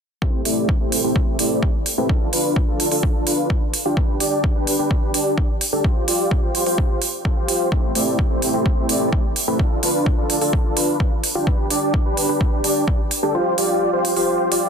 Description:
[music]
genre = EDM, festival progressive house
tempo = 128 BPM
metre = 4/4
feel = straight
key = A minor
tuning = A4 = 440 Hz
[part]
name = dense compressed supersaw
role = riff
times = 0.2-14.7 s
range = A3 to D5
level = -20 LUFS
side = equal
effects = sidechain pumping, low-pass filter, ping-pong delay
[part]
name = electronic kick drum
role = drums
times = 0.2-13.0 s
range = none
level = -20 LUFS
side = equal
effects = none
[part]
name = electronic hi-hat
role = drums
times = 0.5-14.6 s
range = none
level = -22 LUFS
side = right 3 dB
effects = none
[sound]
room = light reverb, digital ambience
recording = dense, heavily limited modern master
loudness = -17 LUFS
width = side -6 dB against mid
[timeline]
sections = 0.2-14.7 A section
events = kick drops out 13.3-14.7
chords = 0.2 Am7; 2.1 Dm; 4.0 G; 5.8 Fsus2; 7.7 Am7; 9.6 Dm; 11.5 G; 13.3 Fsus2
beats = | 0.22 0.69 1.16 1.63 | 2.10 2.56 3.03 3.50 | 3.97 4.44 4.91 5.38 | 5.84 6.31 6.78 7.25 | 7.72 8.19 8.66 9.13 | 9.60 10.06 10.53 11.00 | 11.47 11.94 12.41 12.88 | 13.35 13.81 14.28

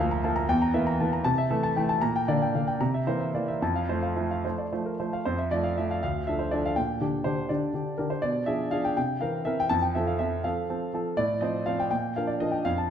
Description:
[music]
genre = classical-period piano sonatina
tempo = 72-83 BPM (dotted quarters)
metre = 6/8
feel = rubato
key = F major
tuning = A4 = 440 Hz
[part]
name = warm concert grand piano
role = solo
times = 0.0-12.9 s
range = D2 to Bb5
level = -25 LUFS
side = equal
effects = none
[sound]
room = wet recital hall reverb, RT60 1.4 s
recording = minimal, uncompressed stereo recording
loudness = -25 LUFS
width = side -8 dB against mid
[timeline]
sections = 0.0-5.2 A section; 5.2-12.9 A section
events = none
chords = 0.5 Edim; 1.2 Am/C; 2.0 Gm/Bb; 2.8 C7; 3.6 F; 6.0 Dm; 6.8 Gm/Bb; 8.2 Bdim7; 9.0 C7; 9.7 F; 11.2 F/A; 11.9 Bb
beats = | 0.48 1.24 | 2.02 2.80 | 3.62 4.44 | 5.25 6.01 | 6.76 7.49 | 8.22 8.96 | 9.70 10.44 | 11.17 11.90 | 12.65

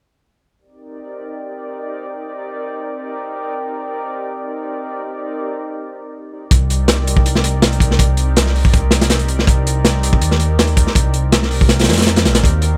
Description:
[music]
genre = drum and bass, jungle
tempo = 162 BPM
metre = 4/4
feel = straight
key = C minor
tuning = A4 = 441 Hz
[part]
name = warbly tape-like pad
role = sustained chords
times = 0.8-12.8 s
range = C4 to F5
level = -28 LUFS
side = equal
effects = chorus, built-in reverb, vintage 12-bit sampler grit
[part]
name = dark detuned saw bass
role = bass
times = 6.5-12.8 s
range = Bb1 to F2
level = -19 LUFS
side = equal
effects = tube saturation
[part]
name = crunchy breakbeat drum kit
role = drums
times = 6.5-12.7 s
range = hi-hat, kick drum, snare drum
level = -16 LUFS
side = equal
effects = none
[sound]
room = studio ambience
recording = none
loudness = -16 LUFS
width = mono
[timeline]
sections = 0.6-6.5 A section; 6.5-12.8 B section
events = drop 6.5-12.8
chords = 0.6 Cm9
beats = | 0.59 0.96 1.33 1.70 | 2.07 2.44 2.81 3.18 | 3.55 3.92 4.29 4.66 | 5.03 5.40 5.77 6.14 | 6.51 6.88 7.25 7.62 | 7.99 8.36 8.73 9.10 | 9.47 9.85 10.21 10.59 | 10.96 11.33 11.70 12.07 | 12.44

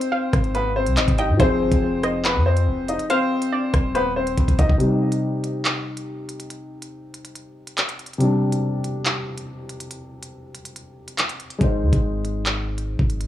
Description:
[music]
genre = hip hop, drill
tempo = 141 BPM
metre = 4/4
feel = half-time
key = C harmonic minor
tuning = A4 = 440 Hz
[part]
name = bright upright piano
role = melody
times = 0.0-4.8 s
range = B3 to Eb5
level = -23 LUFS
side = left 2 dB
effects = analog delay
[part]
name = warbly dusty pluck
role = second line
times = 0.0-4.8 s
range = C5 to G5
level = -28 LUFS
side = left 1 dB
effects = chorus, analog delay
[part]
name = dark concert grand piano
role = accompaniment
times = 0.0-13.3 s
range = C3 to C5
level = -24 LUFS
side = left 1 dB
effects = low-pass filter
[part]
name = drill drum kit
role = drums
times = 0.0-13.3 s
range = handclaps, hi-hat, kick drum, rim click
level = -23 LUFS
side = equal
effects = none
[part]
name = long sustained 808-style bass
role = bass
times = 0.3-4.8, 11.6-13.3 s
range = Eb1 to Ab2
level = -23 LUFS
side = equal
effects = none
[sound]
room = little or no reverb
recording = dry, gritty hardware recording, cassette tape, small room ambience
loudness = -19 LUFS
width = side -12 dB against mid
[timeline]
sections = 0.0-4.8 A section; 4.8-13.3 B section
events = drum fill 4.4-4.8; break 4.8-11.6; filter sweep on grand piano 4.8-13.3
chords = 0.0 Ab; 1.4 Fm; 4.8 Cm; 11.6 Ab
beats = 0.12 0.55 0.97 | 1.40 1.82 2.25 2.67 | 3.10 3.52 3.95 4.38 | 4.80 5.23 5.65 6.08 | 6.50 6.93 7.35 7.78 | 8.21 8.63 9.06 9.48 | 9.91 10.33 10.76 11.18 | 11.61 12.04 12.46 12.89

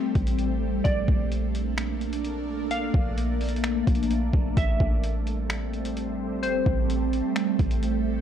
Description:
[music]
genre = hip hop, atmospheric cloud-rap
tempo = 129 BPM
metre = 4/4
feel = half-time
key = A phrygian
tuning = A4 = 440 Hz
[part]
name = glassy wavetable pluck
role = melody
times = 0.0-7.8 s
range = C5 to F5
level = -30 LUFS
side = left 2 dB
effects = chorus, low-pass filter, analog delay
[part]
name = ethereal airy pad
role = sustained chords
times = 0.0-8.2 s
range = G3 to D4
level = -28 LUFS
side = right 1 dB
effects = ensemble chorus, built-in reverb, phaser, sidechain pumping
[part]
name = warm 808-style bass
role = bass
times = 0.2-8.2 s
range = A1 to Bb1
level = -27 LUFS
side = equal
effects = none
[part]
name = trip hop sampler-style drum kit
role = drums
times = 0.2-7.9 s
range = finger snaps, hi-hat, kick drum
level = -28 LUFS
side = equal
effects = none
[sound]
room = little or no reverb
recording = dry, gritty hardware recording, transformer saturation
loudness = -23 LUFS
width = side -9 dB against mid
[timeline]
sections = 0.0-8.2 A section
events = none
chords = 0.0 Am7; 0.8 Bbmaj7; 4.6 Am7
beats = 0.38 | 0.85 1.31 1.78 2.24 | 2.71 3.17 3.64 4.11 | 4.57 5.04 5.50 5.96 | 6.43 6.89 7.36 7.83

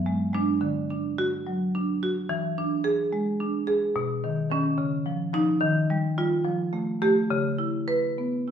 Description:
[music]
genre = classical, contemporary piece for solo marimba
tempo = 72 BPM (dotted quarters)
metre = 6/8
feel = rubato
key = unclear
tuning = A4 = 440 Hz
[part]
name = marimba with medium hard mallets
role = solo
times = 0.0-8.5 s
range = B2 to B4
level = -23 LUFS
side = equal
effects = none
[sound]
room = wet stone room reverb, RT60 1.0 s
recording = heard from further back in the room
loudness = -23 LUFS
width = side -8 dB against mid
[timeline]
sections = 0.0-8.5 A section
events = none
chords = 0.0 E7; 0.6 D; 2.3 E7; 4.0 Badd9; 4.8 C#add9; 5.6 D#add9; 6.5 Fadd9; 7.3 C#m7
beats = | 0.64 1.48 | 2.31 3.13 | 3.95 4.78 | 5.62 6.46 | 7.31 8.17

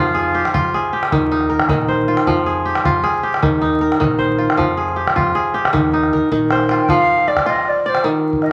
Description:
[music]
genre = west african traditional, West African string and xylophone music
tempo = 104 BPM (dotted quarters)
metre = 12/8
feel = straight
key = F dorian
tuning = A4 = 439 Hz
[part]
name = bright wooden flute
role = melody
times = 0.0-0.7, 6.8-8.5 s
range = F4 to G5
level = -20 LUFS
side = equal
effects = none
[part]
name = kora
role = arpeggios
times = 0.0-8.5 s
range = Eb3 to D5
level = -19 LUFS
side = equal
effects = none
[part]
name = fingered electric bass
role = bass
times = 0.0-6.8 s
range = Bb1 to F2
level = -29 LUFS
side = equal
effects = none
[part]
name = calabash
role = percussion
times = 0.1-8.5 s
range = none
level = -23 LUFS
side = equal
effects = none
[sound]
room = moderate large studio reverb, RT60 1.2 s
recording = vinyl crackle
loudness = -17 LUFS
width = mono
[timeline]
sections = 0.0-6.9 A section; 6.9-8.5 B section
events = drum fill 6.1-6.9; flute solo 6.9-8.5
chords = 0.0 Fm; 1.1 Eb; 2.3 Fm; 3.4 Eb; 4.6 Fm; 5.7 Eb; 6.9 F5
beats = 0.54 1.12 1.70 | 2.28 2.86 3.44 4.01 | 4.59 5.17 5.75 6.32 | 6.90 7.47 8.05

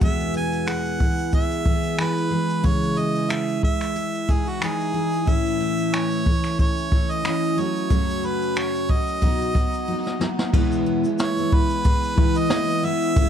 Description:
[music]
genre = acoustic pop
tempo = 91 BPM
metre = 4/4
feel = swing 55% on 16ths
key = E major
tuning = A4 = 440 Hz
[part]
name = clear harmonica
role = melody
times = 0.0-13.3 s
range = F#4 to G#5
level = -27 LUFS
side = right 2 dB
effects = plate reverb, ping-pong delay
[part]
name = picked steel-string acoustic guitar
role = accompaniment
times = 0.0-13.3 s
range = E2 to G#4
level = -24 LUFS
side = left 1 dB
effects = double-tracked left and right
[part]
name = picked steel-string acoustic guitar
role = arpeggios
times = 0.0-13.3 s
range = E3 to A4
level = -32 LUFS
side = right 4 dB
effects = none
[part]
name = jazz brush drum kit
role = drums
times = 0.0-13.3 s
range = crash cymbal, finger snaps, kick drum, shaker, snare drum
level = -22 LUFS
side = equal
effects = none
[sound]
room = light reverb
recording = dark, warm production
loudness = -20 LUFS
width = side -9 dB against mid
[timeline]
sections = 0.0-10.5 A section; 10.5-13.3 B section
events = drum fill 9.9-10.5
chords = 0.0 E; 2.6 C#madd9; 5.3 A; 7.6 F#m; 9.2 B; 10.5 E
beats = | 0.02 0.67 1.33 1.99 | 2.65 3.31 3.96 4.62 | 5.28 5.94 6.59 7.25 | 7.91 8.57 9.22 9.88 | 10.54 11.20 11.85 12.51 | 13.16

